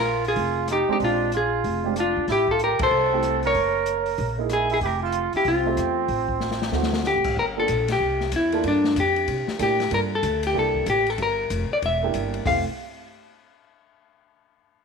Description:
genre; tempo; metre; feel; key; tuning
jazz, small-group swing and bop; 188 BPM; 4/4; swing 63% on 8ths; F major; A4 = 440 Hz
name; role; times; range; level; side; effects
vintage hollow-body jazz guitar; melody; 0.0-12.6 s; D4 to F5; -23 LUFS; left 3 dB; none
breathy trumpet; second line; 0.0-7.0 s; C4 to Bb4; -26 LUFS; right 10 dB; slapback echo
upright bass; bass; 0.0-12.6 s; E1 to C3; -29 LUFS; equal; none
open jazz drum kit; drums; 0.2-12.5 s; crash cymbal, hi-hat, kick drum, ride cymbal, rim click, snare drum, toms; -32 LUFS; left 5 dB; none
dark upright piano; accompaniment; 0.9-12.6 s; Ab3 to E5; -29 LUFS; right 12 dB; none
room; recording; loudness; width
moderate echo chamber reverb, RT60 1.4 s, studio reverb; 1960s-style stereo; -20 LUFS; side -5 dB against mid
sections
0.0-7.4 A section; 7.4-12.4 B section; 12.4-13.7 C section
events
band accent 2.7; drum fill 6.4-7.0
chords
0.0 Bb5; 1.0 Bb13; 2.3 Am7; 3.5 Gb13; 4.8 Fmaj9; 6.7 D7; 7.4 Gm7; 8.0 C7; 8.6 Gm7; 9.3 C7; 9.9 Gm7; 10.5 C7; 11.2 Gm7; 11.8 Em7b5; 12.4 Fmaj9

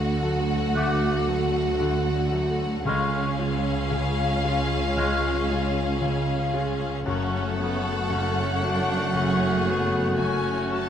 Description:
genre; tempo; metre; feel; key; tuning
cinematic; 57 BPM; 4/4; rubato; F# minor; A4 = 440 Hz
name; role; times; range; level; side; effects
warm symphonic violin section; melody; 0.0-10.9 s; E#5 to A5; -32 LUFS; left 3 dB; none
rich symphonic violin section; second line; 0.0-10.9 s; F#4 to A4; -34 LUFS; left 2 dB; none
clear concert grand piano; accompaniment; 0.0-10.9 s; F#1 to A4; -30 LUFS; left 1 dB; none
rich symphonic viola section; accompaniment; 0.0-10.9 s; A3 to D4; -33 LUFS; right 2 dB; none
dark French horn section; sustained chords; 0.0-10.9 s; G#3 to F#4; -30 LUFS; left 1 dB; none
concert harp; arpeggios; 0.0-10.9 s; F#2 to A5; -33 LUFS; left 7 dB; none
dark symphonic double bass section; bass; 0.0-10.9 s; F#1 to D2; -30 LUFS; right 4 dB; none
warm symphonic cello section; bass; 0.0-10.9 s; C#2 to F#2; -32 LUFS; right 4 dB; none
clear oboe; second line; 0.7-10.9 s; E#5 to F#5; -33 LUFS; right 2 dB; none
bright clarinet; second line; 0.8-10.9 s; G#3 to A3; -36 LUFS; left 1 dB; none
mellow hollow large flute ensemble; second line; 0.8-10.9 s; C#6 to D6; -33 LUFS; left 4 dB; none
room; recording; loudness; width
light reverb; close, detailed microphones; -22 LUFS; side -9 dB against mid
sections
0.0-10.9 A section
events
none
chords
0.0 D; 2.9 C#; 7.1 F#m

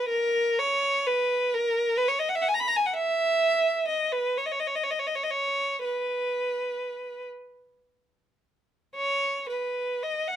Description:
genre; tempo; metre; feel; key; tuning
classical, free, expressive piece for unaccompanied violin; 32-44 BPM (dotted quarters); 6/8; rubato; unclear; A4 = 440 Hz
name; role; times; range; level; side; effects
rich violin; solo; 0.0-10.4 s; A#4 to B5; -24 LUFS; equal; none
room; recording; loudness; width
light reverb; none; -24 LUFS; side -10 dB against mid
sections
0.0-10.4 A section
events
none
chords
none

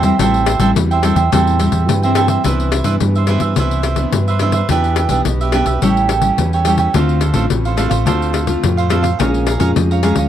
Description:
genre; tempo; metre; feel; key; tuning
samba and choro; 106 BPM; 4/4; straight; C major; A4 = 441 Hz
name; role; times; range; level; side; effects
cavaquinho; accompaniment; 0.0-10.3 s; D4 to Bb5; -19 LUFS; right 7 dB; none
nylon-string guitar; accompaniment; 0.0-10.3 s; G2 to G4; -19 LUFS; left 2 dB; none
fingered electric bass; bass; 0.0-10.3 s; A1 to G2; -17 LUFS; equal; none
pandeiro; percussion; 0.0-10.3 s; none; -20 LUFS; left 7 dB; none
room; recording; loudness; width
small room ambience; dry, close 1970s-style studio recording; -13 LUFS; side -10 dB against mid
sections
0.0-2.4 A section; 2.4-10.3 B section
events
none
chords
0.0 Am7; 2.4 Cmaj9; 4.7 Em7; 5.8 A7; 7.0 Dm7; 9.2 Bbm7

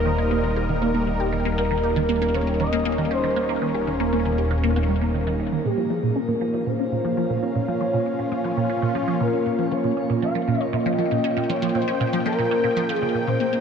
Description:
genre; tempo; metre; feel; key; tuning
ambient, sequencer-driven space music; 118 BPM; 4/4; straight; Bb dorian; A4 = 440 Hz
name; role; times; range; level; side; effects
expressive portamento lead; melody; 0.0-13.6 s; G4 to F5; -26 LUFS; left 1 dB; lush chorus, shimmer reverb, ping-pong delay
sweeping resonant pad; sustained chords; 0.0-13.6 s; G3 to G5; -25 LUFS; equal; chorus, shimmer reverb
resonant blip pluck; riff; 0.0-13.6 s; Bb2 to G4; -25 LUFS; right 1 dB; phaser, wide subtle chorus, shimmer reverb, ping-pong delay
fat analog bass; bass; 0.0-5.6 s; Eb1; -26 LUFS; equal; tube saturation
room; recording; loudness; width
wet huge ambient reverb, RT60 7.7 s; dark, warm production; -20 LUFS; side -6 dB against mid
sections
0.0-5.6 A section; 5.6-13.6 B section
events
filter sweep on synth arpeggio sound 0.0-5.6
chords
0.0 Eb; 5.6 Bbm

